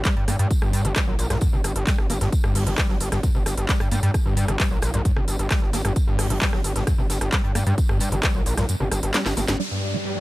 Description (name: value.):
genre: driving peak-time techno.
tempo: 132 BPM.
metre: 4/4.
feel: straight.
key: G harmonic minor.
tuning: A4 = 441 Hz.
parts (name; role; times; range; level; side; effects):
crisp fusion drum kit; drums; 0.0-10.2 s; hi-hat, snare drum, tambourine; -37 LUFS; right 1 dB; sidechain pumping on hats, high-pass filter on hats, low-pass filter on hats, high-pass filter on snare, low-pass filter on snare, sidechain pumping on perc, high-pass filter on perc, low-pass filter on perc, high-pass filter on room, low-pass filter on room.
screaming distorted acid line; riff; 0.1-10.2 s; F#2 to Bb3; -28 LUFS; equal; distortion, lush chorus, vintage 12-bit sampler grit, sidechain pumping, ping-pong delay.
electronic kick drum; drums; 0.1-8.3 s; none; -22 LUFS; equal; none.
techno drum kit; drums; 0.1-9.6 s; handclaps, hi-hat, rim click, snare drum; -27 LUFS; equal; sidechain pumping on hats, low-pass filter on hats, low-pass filter on snare.
gritty driven synth bass; bass; 0.2-9.6 s; G1 to G2; -24 LUFS; equal; distortion, sidechain pumping.
filtered dub chord stab; stabs; 9.6-10.0 s; G3 to D5; -30 LUFS; right 6 dB; none.
overtone-sweeping drone; drone; 9.8-10.2 s; G2 to G3; -35 LUFS; equal; chorus, built-in reverb, sidechain pumping.
downlifter; sound effects; 9.6-10.2 s; none; -30 LUFS; equal; none.
airy breathy pad; texture; 9.7-10.2 s; G4 to G5; -33 LUFS; left 4 dB; chorus, sidechain pumping.
room: small room ambience.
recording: none.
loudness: -20 LUFS.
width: side -18 dB against mid.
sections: 0.0-9.6 A section.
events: kick drops out 8.7-9.6; drum fill 9.1-9.6.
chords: 0.0 Gm; 9.6 G5.